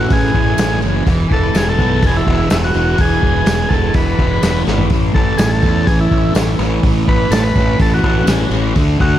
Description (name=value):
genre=psychedelic rock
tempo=125 BPM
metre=4/4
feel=straight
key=A major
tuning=A4 = 440 Hz
part: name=overdriven combo organ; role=melody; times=0.0-9.2 s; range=E4 to B4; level=-19 LUFS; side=equal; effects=tape echo
part: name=thick fuzz guitar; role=riff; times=0.0-9.2 s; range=A2 to C#4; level=-18 LUFS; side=right 1 dB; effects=distortion, phaser
part: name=fuzz fingered electric bass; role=bass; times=0.0-9.2 s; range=E1 to E2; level=-18 LUFS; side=equal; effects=overdrive
part: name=vintage drum kit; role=drums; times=0.1-9.1 s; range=hi-hat, kick drum, snare drum, toms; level=-16 LUFS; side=equal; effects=tape echo
part: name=tambourine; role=percussion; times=0.6-8.4 s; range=none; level=-36 LUFS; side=left 11 dB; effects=tape echo
room=studio reverb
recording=echo-heavy mix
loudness=-12 LUFS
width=side -12 dB against mid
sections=0.0-9.2 A section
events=drum fill 4.7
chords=0.0 A; 1.1 E; 4.9 A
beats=0.10 0.58 | 1.07 1.55 2.03 2.51 | 2.99 3.47 3.95 4.43 | 4.92 5.39 5.88 6.36 | 6.84 7.32 7.80 8.28 | 8.76